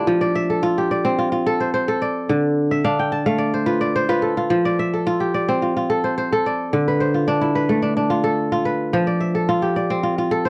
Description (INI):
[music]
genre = west african traditional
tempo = 108 BPM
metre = 4/4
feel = straight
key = F lydian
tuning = A4 = 440 Hz
[part]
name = kora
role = solo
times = 0.0-10.5 s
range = D3 to A5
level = -20 LUFS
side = equal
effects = none
[sound]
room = little or no reverb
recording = dry, close 1970s-style studio recording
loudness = -20 LUFS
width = mono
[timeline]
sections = 0.0-10.5 A section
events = kora fill 2.7-4.5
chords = 0.1 F; 2.3 Dm; 4.5 F; 6.7 Dm; 8.9 F